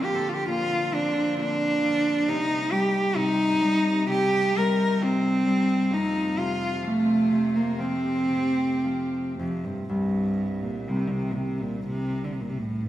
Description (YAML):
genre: celtic folk, Celtic slow air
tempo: 53-68 BPM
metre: 4/4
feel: rubato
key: C dorian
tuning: A4 = 440 Hz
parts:
  - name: warm cello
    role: melody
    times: 0.0-12.9 s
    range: F2 to Bb4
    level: -24 LUFS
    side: right 1 dB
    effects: none
  - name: Celtic harp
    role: accompaniment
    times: 0.0-12.9 s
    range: C2 to C4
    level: -28 LUFS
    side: left 1 dB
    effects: none
  - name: rich chamber string section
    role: sustained chords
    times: 0.0-9.9 s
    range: C3 to G4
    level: -36 LUFS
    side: equal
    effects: none
room: wet recital hall reverb, RT60 1.5 s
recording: recorded in a church or concert hall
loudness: -22 LUFS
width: side -13 dB against mid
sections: 0.0-9.9 A section; 9.9-12.9 B section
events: none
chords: 0.0 Bb; 2.3 Cm; 5.9 F; 9.9 Cm